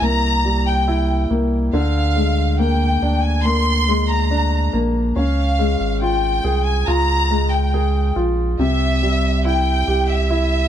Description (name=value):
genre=pop ballad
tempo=70 BPM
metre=4/4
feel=straight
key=unclear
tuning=A4 = 440 Hz
part: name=warm studio violin section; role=melody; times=0.0-10.7 s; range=E5 to C6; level=-22 LUFS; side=left 1 dB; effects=none
part: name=clear baby grand piano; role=accompaniment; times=0.0-10.7 s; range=C3 to Ab4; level=-21 LUFS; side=left 1 dB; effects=none
part: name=warm sub bass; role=bass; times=0.0-10.7 s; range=Ab1 to D2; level=-19 LUFS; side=equal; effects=none
room=studio reverb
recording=dry, close 1970s-style studio recording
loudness=-16 LUFS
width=side -10 dB against mid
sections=0.0-10.7 A section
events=none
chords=0.0 C7; 1.7 Bb7/D; 5.2 Db; 8.6 C